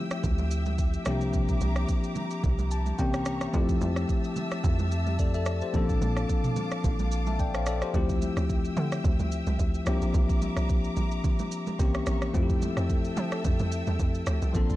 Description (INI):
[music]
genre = amapiano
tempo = 109 BPM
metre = 4/4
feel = swing 55% on 16ths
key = unclear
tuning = A4 = 440 Hz
[part]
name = bell-like tine electric piano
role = accompaniment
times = 0.0-14.8 s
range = Db3 to A5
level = -31 LUFS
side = left 3 dB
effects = none
[part]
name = rich studio string section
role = sustained chords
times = 0.0-14.8 s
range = G4 to E6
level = -38 LUFS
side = left 1 dB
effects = sidechain pumping
[part]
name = afro-pop drum kit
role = drums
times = 0.1-14.8 s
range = kick drum, rim click, shaker, toms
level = -29 LUFS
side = right 1 dB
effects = none
[part]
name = plucky analog bass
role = bass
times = 0.2-7.8 s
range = Bb1 to F2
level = -28 LUFS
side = equal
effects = none
[part]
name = congas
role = percussion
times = 0.2-14.7 s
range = none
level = -38 LUFS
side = right 4 dB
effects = none
[part]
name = hollow log drum bass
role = bass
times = 7.9-14.8 s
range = Bb1 to F3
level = -29 LUFS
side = equal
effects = none
[sound]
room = little or no reverb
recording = dark, warm production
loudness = -25 LUFS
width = side -16 dB against mid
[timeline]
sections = 0.0-14.8 A section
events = tine electric piano fill 2.4-3.5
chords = 0.0 Dm11; 1.1 C9sus4; 3.0 C7b9; 3.5 Fmaj9; 5.7 Bbmaj9; 7.9 Dm11; 9.9 C9sus4; 11.8 C7b9; 12.3 Fmaj9